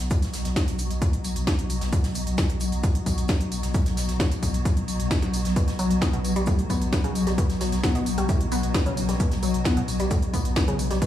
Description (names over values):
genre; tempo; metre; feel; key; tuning
driving peak-time techno; 132 BPM; 4/4; straight; unclear; A4 = 440 Hz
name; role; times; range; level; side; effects
saturated sub bass; bass; 0.0-11.0 s; B1; -29 LUFS; equal; sidechain pumping, low-pass filter
swarming drone; drone; 0.0-11.1 s; B2 to F#3; -29 LUFS; left 1 dB; built-in reverb, sidechain pumping
techno drum kit; drums; 0.0-11.1 s; hi-hat, snare drum, tambourine; -31 LUFS; equal; sidechain pumping on hats, sidechain pumping on cymbals, sidechain pumping on perc
electronic kick drum; drums; 0.1-11.1 s; none; -24 LUFS; equal; none
natural country drum kit; drums; 0.1-11.1 s; hi-hat, shaker, snare drum; -40 LUFS; right 1 dB; sidechain pumping on hats, high-pass filter on hats, high-pass filter on snare, sidechain pumping on perc, high-pass filter on perc, high-pass filter on room
wide unison pluck; riff; 5.6-11.1 s; A2 to B3; -28 LUFS; left 1 dB; phaser, sidechain pumping, tape echo
room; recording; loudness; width
light reverb, small room ambience; studio reverb; -22 LUFS; side -12 dB against mid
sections
0.0-11.1 A section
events
none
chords
0.0 B5